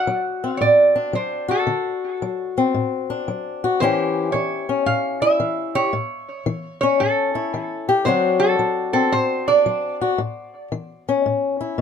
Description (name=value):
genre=acoustic country blues, solo or duo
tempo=113 BPM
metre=4/4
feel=swing 65% on 8ths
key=D mixolydian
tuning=A4 = 440 Hz
part: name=lap resonator guitar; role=melody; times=0.0-10.0 s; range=A4 to F#5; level=-20 LUFS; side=right 3 dB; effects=tape echo
part: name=fingerpicked swing-style acoustic guitar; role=accompaniment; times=0.0-11.8 s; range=A2 to G4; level=-21 LUFS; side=left 5 dB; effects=none
room=light reverb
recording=close, detailed microphones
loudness=-18 LUFS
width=side -7 dB against mid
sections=0.0-11.8 A section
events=none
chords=0.0 D7; 3.8 A7; 8.1 D7; 10.2 A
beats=0.07 0.61 1.14 | 1.68 2.21 2.74 3.28 | 3.81 4.34 4.87 5.41 | 5.94 6.47 7.00 7.53 | 8.06 8.59 9.12 9.65 | 10.18 10.71 11.24 11.77